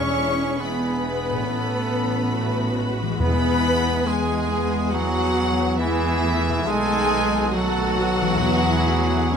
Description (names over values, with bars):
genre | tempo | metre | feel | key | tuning
classical | 69 BPM | 4/4 | rubato | unclear | A4 = 441 Hz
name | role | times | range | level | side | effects
rich studio violin section | melody | 0.0-9.4 s | E5 to C#6 | -28 LUFS | left 3 dB | none
mellow cor anglais | second line | 0.0-9.4 s | E3 to C#4 | -29 LUFS | right 3 dB | none
mellow hollow large flute ensemble | second line | 0.0-9.4 s | E4 to C#5 | -30 LUFS | equal | none
rich studio violin section | second line | 0.0-9.4 s | E4 to C#5 | -31 LUFS | left 2 dB | none
rich studio viola section | accompaniment | 0.0-9.4 s | G#3 to F#4 | -29 LUFS | right 1 dB | none
dark French horn section | sustained chords | 0.0-9.4 s | E3 to C#4 | -29 LUFS | left 5 dB | none
warm trombone section | sustained chords | 0.0-9.4 s | D#3 to D4 | -31 LUFS | right 4 dB | none
concert harp | arpeggios | 0.0-9.4 s | E2 to D5 | -32 LUFS | left 12 dB | none
mellow trumpet | stabs | 0.0-9.4 s | G#4 to A4 | -31 LUFS | right 2 dB | none
rich studio cello section | bass | 0.0-9.4 s | E3 to C#4 | -30 LUFS | right 3 dB | none
warm studio double bass section | bass | 0.0-9.4 s | E1 to E2 | -28 LUFS | right 2 dB | none
timpani | percussion | 0.0-9.4 s | E2 | -29 LUFS | equal | none
room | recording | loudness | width
light reverb | close, detailed microphones | -19 LUFS | side -7 dB against mid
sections
0.0-9.4 A section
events
none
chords
0.0 E7; 1.5 A; 3.2 E; 6.7 B7; 8.4 E